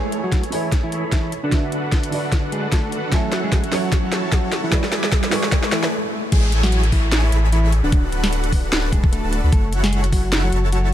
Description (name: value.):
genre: future bass.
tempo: 150 BPM.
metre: 4/4.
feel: swing 56% on 16ths, half-time.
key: A major.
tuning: A4 = 439 Hz.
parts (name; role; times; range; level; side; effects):
mellow electric guitar; melody; 0.0-10.9 s; D3 to A4; -27 LUFS; equal; sidechain pumping, ping-pong delay.
felt-muted upright piano; accompaniment; 0.0-6.3 s; D3 to C#6; -27 LUFS; right 4 dB; sidechain pumping, ping-pong delay.
dense compressed supersaw; riff; 0.0-10.9 s; D4 to B5; -26 LUFS; equal; sidechain pumping, low-pass filter.
riser, swell and downlifter; sound effects; 0.0-9.5 s; none; -30 LUFS; equal; none.
trap drum kit; drums; 0.1-10.8 s; crash cymbal, hi-hat, snare drum; -24 LUFS; equal; none.
electronic kick drum; drums; 0.3-10.2 s; none; -18 LUFS; equal; none.
saturated sub bass; bass; 6.3-10.9 s; D1 to D2; -19 LUFS; equal; sidechain pumping.
room: little or no reverb.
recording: none.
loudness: -17 LUFS.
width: side -12 dB against mid.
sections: 0.0-6.3 A section; 6.3-10.9 B section.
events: build-up 0.0-6.3; drum fill 0.0-5.9; filter sweep on supersaw synth 0.0-6.3; swell 5.5-6.3; break 5.9-6.3; drop 6.3-10.9.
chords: 0.0 Amaj7; 1.3 D6; 3.1 F#m7; 4.7 E7; 6.3 Amaj7; 7.7 D6; 9.5 F#m7.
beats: 0.32 0.72 1.12 | 1.52 1.92 2.32 2.72 | 3.12 3.52 3.92 4.32 | 4.72 5.12 5.52 5.92 | 6.32 6.72 7.12 7.52 | 7.92 8.32 8.72 9.12 | 9.52 9.92 10.32 10.72.